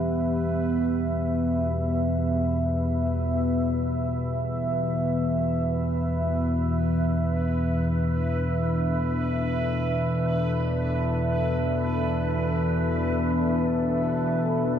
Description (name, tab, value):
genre	dark ambient drone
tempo	free time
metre	none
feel	none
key	unclear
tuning	A4 = 441 Hz
part	deep dark ambient pad	sustained chords	0.0-14.8 s	E3 to E5	-28 LUFS	equal	chorus, built-in reverb
part	analog drone	drone	0.0-14.8 s	E2 to B2	-25 LUFS	left 1 dB	chorus
part	bubbling stepped-filter texture	texture	0.0-14.8 s	B4	-34 LUFS	equal	chorus, built-in reverb
room	wet cathedral reverb, RT60 5.2 s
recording	dark, warm production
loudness	-23 LUFS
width	side -9 dB against mid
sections	0.0-14.8 A section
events	fade-in on synth texture 0.0-14.8; filter sweep on synth drone 0.0-14.8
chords	0.0 Em; 5.2 Dsus2/E